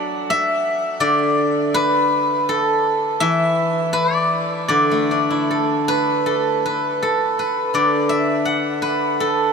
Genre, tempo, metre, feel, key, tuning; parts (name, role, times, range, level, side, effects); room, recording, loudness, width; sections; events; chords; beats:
chinese traditional, Chinese solo plucked strings; 81 BPM; 4/4; uneven beats, rubato; D gong mode; A4 = 440 Hz
steel-string zither; solo; 0.0-9.5 s; D3 to F#5; -16 LUFS; equal
wet huge ambient reverb, RT60 7.8 s; dreamy mix soaked in reverb; -16 LUFS; side -5 dB against mid
0.0-6.3 A section; 6.3-9.5 B section
| 0.33 1.04 1.76 2.49 | 3.23 3.96 4.71 5.50 | 6.28 7.03 7.76 8.48 | 9.21